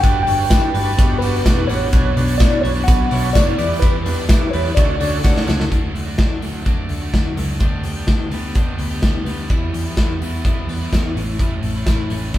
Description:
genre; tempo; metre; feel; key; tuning
jangly indie pop; 127 BPM; 4/4; straight; D major; A4 = 440 Hz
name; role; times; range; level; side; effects
mellow tine electric piano; melody; 0.0-5.4 s; B4 to G5; -21 LUFS; equal; medium stereo tremolo
crunchy overdriven guitar; accompaniment; 0.0-12.4 s; B2 to C#5; -29 LUFS; right 3 dB; none
overdriven combo organ; accompaniment; 0.0-5.7 s; D4 to D5; -26 LUFS; right 3 dB; none
twelve-string electric guitar; arpeggios; 0.0-12.4 s; A2 to C#5; -27 LUFS; left 5 dB; none
vintage muted picked electric bass; bass; 0.0-12.4 s; E1 to E2; -23 LUFS; equal; none
big rock drum kit; drums; 0.0-12.4 s; hi-hat, kick drum, ride cymbal, snare drum; -18 LUFS; equal; none
tambourine; percussion; 0.0-5.6 s; none; -40 LUFS; left 5 dB; none
room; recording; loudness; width
moderate large studio reverb, RT60 0.9 s; band playing live in one room; -15 LUFS; side -13 dB against mid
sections
0.0-5.7 A section; 5.7-12.4 B section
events
drum fill 5.2-5.7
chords
0.0 Gmaj7; 1.9 Bmadd9; 3.6 Em7; 4.8 Dmaj7; 7.6 G/D; 9.5 Em; 11.2 A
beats
| 0.04 0.51 0.99 1.46 | 1.93 2.40 2.88 3.35 | 3.82 4.30 4.77 5.24 | 5.72 6.19 6.66 7.14 | 7.61 8.08 8.56 9.03 | 9.50 9.98 10.45 10.92 | 11.39 11.87 12.34

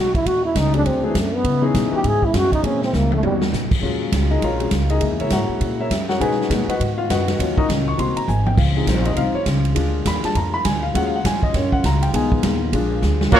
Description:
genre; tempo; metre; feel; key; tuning
jazz, big band swing; 202 BPM; 4/4; swing 62% on 8ths; Eb minor from 3.8 s; A4 = 440 Hz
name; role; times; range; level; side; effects
breathy trombone; melody; 0.0-3.4 s; E3 to G#4; -20 LUFS; equal; none
mellow trombone section; sustained chords; 0.0-13.4 s; C3 to F#4; -31 LUFS; equal; none
upright bass; bass; 0.0-13.4 s; Ab1 to C#3; -21 LUFS; equal; none
swinging big-band drum kit; drums; 0.1-13.4 s; crash cymbal, hi-hat, kick drum, ride cymbal, snare drum, toms; -23 LUFS; right 1 dB; none
warm concert grand piano; accompaniment; 0.7-13.3 s; D#3 to Db6; -22 LUFS; left 3 dB; none
bright trumpet section; melody; 13.3-13.4 s; Bb3 to Db5; -12 LUFS; right 1 dB; none
bright trombone section; second line; 13.3-13.4 s; Gb3 to Db4; -18 LUFS; right 7 dB; none
room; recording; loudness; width
light reverb; dark, warm production; -17 LUFS; side -10 dB against mid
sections
0.0-3.8 A section; 3.8-13.3 A section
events
trombone solo 0.0-3.8; drum fill 2.9-3.5, 8.3, 13.0; grand piano solo 3.8-13.3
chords
0.3 D#m7b5; 0.9 D7#11; 1.4 C#m7; 2.6 A#m7b5; 3.2 D#7alt; 3.8 Ebm11; 5.0 Gb7; 6.2 B6; 7.4 Ebm7; 8.0 Ab7; 8.6 Dbmaj7; 9.8 Bb7; 10.9 Ebm11; 12.1 Fm7b5; 12.7 Bb7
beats
| 0.26 0.56 0.85 1.15 | 1.45 1.75 2.04 2.34 | 2.64 2.93 3.23 3.53 | 3.83 4.12 4.42 4.72 | 5.01 5.31 5.61 5.90 | 6.20 6.50 6.79 7.09 | 7.39 7.68 7.98 8.28 | 8.57 8.87 9.17 9.46 | 9.76 10.06 10.35 10.65 | 10.95 11.24 11.54 11.84 | 12.13 12.43 12.73 13.03 | 13.32

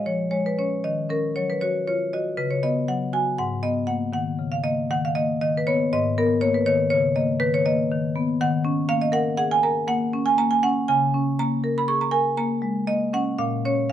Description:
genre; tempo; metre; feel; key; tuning
classical, contemporary piece for solo marimba; 119 BPM; 5/4; rubato; Eb minor; A4 = 438 Hz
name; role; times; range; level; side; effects
marimba with medium hard mallets; solo; 0.0-13.9 s; Ab2 to Db6; -20 LUFS; equal; none
room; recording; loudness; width
moderate studio reverb, RT60 0.7 s; dark, warm production; -20 LUFS; side -10 dB against mid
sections
0.0-13.9 A section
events
none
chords
0.0 Bbm7; 0.8 Ebm7; 2.4 Db7sus4; 3.4 Abmadd9; 8.4 Ebm7; 10.9 Db5; 13.4 Bbm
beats
0.32 | 0.84 1.35 1.86 2.38 2.88 | 3.38 3.88 4.39 4.90 5.41 | 5.91 6.41 6.90 7.41 7.91 | 8.40 8.89 9.38 9.88 10.38 | 10.88 11.38 11.88 12.38 12.88 | 13.39 13.90

